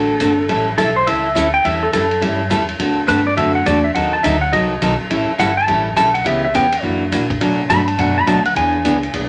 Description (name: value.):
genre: country, western swing.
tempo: 208 BPM.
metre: 4/4.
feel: swing 62% on 8ths.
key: A mixolydian.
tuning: A4 = 438 Hz.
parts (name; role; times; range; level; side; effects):
clean lap steel guitar; second line; 0.0-9.1 s; A4 to B5; -19 LUFS; equal; none.
picked steel-string acoustic guitar; accompaniment; 0.0-9.3 s; B2 to A4; -20 LUFS; equal; none.
upright bass; bass; 0.0-9.3 s; G1 to B2; -27 LUFS; equal; none.
vintage drum kit; drums; 0.2-9.2 s; hi-hat, kick drum, ride cymbal; -27 LUFS; equal; none.
room: wet club reverb, RT60 0.5 s.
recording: none.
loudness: -16 LUFS.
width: mono.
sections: 0.0-9.3 A section.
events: electric slide guitar solo 0.0-9.3.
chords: 0.5 A7; 2.8 D7; 4.0 D#dim7; 5.1 A7; 6.3 C#m7b5; 6.8 F#aug7; 7.4 Bm7; 8.6 E7.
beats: 0.20 | 0.49 0.78 1.07 1.36 | 1.65 1.93 2.22 2.51 | 2.80 3.09 3.38 3.66 | 3.95 4.24 4.53 4.82 | 5.11 5.39 5.68 5.97 | 6.26 6.55 6.83 7.12 | 7.41 7.70 7.99 8.27 | 8.56 8.85 9.13.